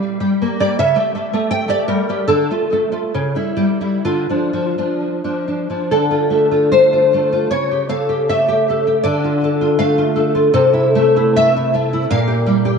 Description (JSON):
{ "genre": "romantic piece for solo classical guitar", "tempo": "61-83 BPM", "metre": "2/4", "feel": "rubato", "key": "D minor", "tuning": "A4 = 440 Hz", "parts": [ { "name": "nylon-string guitar", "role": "solo", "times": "0.0-12.8 s", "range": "Bb2 to G5", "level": "-14 LUFS", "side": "equal", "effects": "ensemble chorus, ping-pong delay" } ], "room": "wet plate reverb, RT60 3.4 s", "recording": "dreamy mix soaked in reverb, nothing above 10.3 kHz", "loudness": "-14 LUFS", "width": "side -5 dB against mid", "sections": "0.0-5.9 A section; 5.9-12.8 B section", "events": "none", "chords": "0.0 Gm; 0.8 A7(no3); 2.3 Dm; 3.1 A7/C#; 4.1 Dm; 7.5 A7/C#; 9.0 Dm; 10.5 Am/C; 12.1 Gm/Bb" }